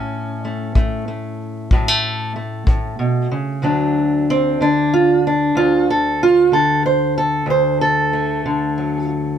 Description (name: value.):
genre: acoustic country blues, solo or duo.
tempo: 62 BPM (dotted quarters).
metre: 12/8.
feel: straight.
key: D major.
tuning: A4 = 440 Hz.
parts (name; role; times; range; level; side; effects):
fingerpicked steel-string acoustic guitar; melody; 0.0-9.4 s; D2 to C5; -16 LUFS; right 1 dB; none.
kick drum; drums; 0.8-2.8 s; none; -16 LUFS; left 1 dB; none.
room: light reverb.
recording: close, detailed microphones.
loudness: -15 LUFS.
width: side -9 dB against mid.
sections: 0.0-3.6 A section; 3.6-9.4 B section.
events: steel-string acoustic guitar solo 3.6-9.4.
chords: 0.0 A; 3.6 D.